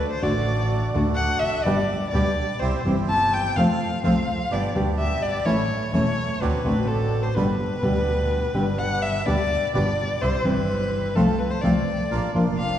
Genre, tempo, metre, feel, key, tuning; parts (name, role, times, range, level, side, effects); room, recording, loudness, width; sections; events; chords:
tango; 126 BPM; 4/4; rubato; G major; A4 = 440 Hz
warm violin; second line; 0.0-12.8 s; A4 to A5; -25 LUFS; left 2 dB
nylon-string guitar; accompaniment; 0.2-12.4 s; B2 to G4; -24 LUFS; left 1 dB
bandoneon; stabs; 0.2-12.8 s; F#3 to A4; -31 LUFS; right 4 dB
rich double bass; bass; 0.2-12.8 s; E1 to F2; -27 LUFS; right 1 dB
wet church reverb, RT60 2.6 s; recorded in a church or concert hall, vinyl crackle; -20 LUFS; side -10 dB against mid
0.0-12.8 A section
violin solo 0.0-12.8
0.0 D; 1.7 G; 2.6 C; 3.6 F; 4.5 G; 5.5 A; 6.4 D7; 7.4 G; 10.2 C; 11.2 F/C; 12.1 Bb